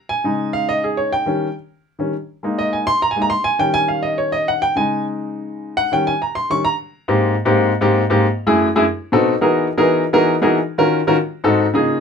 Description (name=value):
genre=jazz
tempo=206 BPM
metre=4/4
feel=straight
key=Ab major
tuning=A4 = 440 Hz
part: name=warm baby grand piano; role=solo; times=0.1-12.0 s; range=Gb2 to Db6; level=-15 LUFS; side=equal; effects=none
room=light reverb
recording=minimal, uncompressed stereo recording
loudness=-15 LUFS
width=side -6 dB against mid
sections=0.0-7.1 A section; 7.1-12.0 B section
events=grand piano solo 0.0-7.1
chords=0.1 Dbsus2; 1.3 Eb7; 2.4 Absus2; 3.6 Eb7; 4.8 Dbsus2; 5.9 Eb7; 7.1 Abmaj7; 8.2 Gbm7; 8.8 B7b9; 9.4 Emaj9#11; 10.6 Ebm9; 11.2 Ab7b9